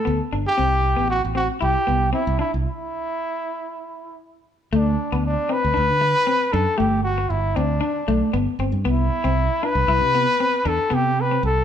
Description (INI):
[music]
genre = highlife guitar band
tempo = 116 BPM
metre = 4/4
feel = straight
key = unclear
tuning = A4 = 440 Hz
[part]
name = breathy trumpet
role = melody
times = 0.0-11.6 s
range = D4 to B4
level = -21 LUFS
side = equal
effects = none
[part]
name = electric guitar at the edge of break-up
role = accompaniment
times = 0.0-11.5 s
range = A3 to E4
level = -25 LUFS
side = left 4 dB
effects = none
[part]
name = fingered electric bass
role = bass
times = 0.1-11.6 s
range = G1 to D3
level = -23 LUFS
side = right 1 dB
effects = none
[sound]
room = moderate large studio reverb, RT60 1.2 s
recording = band playing live in one room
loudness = -18 LUFS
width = side -9 dB against mid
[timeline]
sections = 0.0-4.7 A section; 4.7-11.6 B section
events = stop 2.7-4.7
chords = 0.0 G; 0.6 C; 4.7 N.C.; 6.8 G; 8.9 C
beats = 0.07 | 0.59 1.11 1.63 2.15 | 2.66 3.18 3.70 4.22 | 4.73 5.25 5.76 6.28 | 6.80 7.31 7.83 8.34 | 8.86 9.37 9.89 10.40 | 10.92 11.44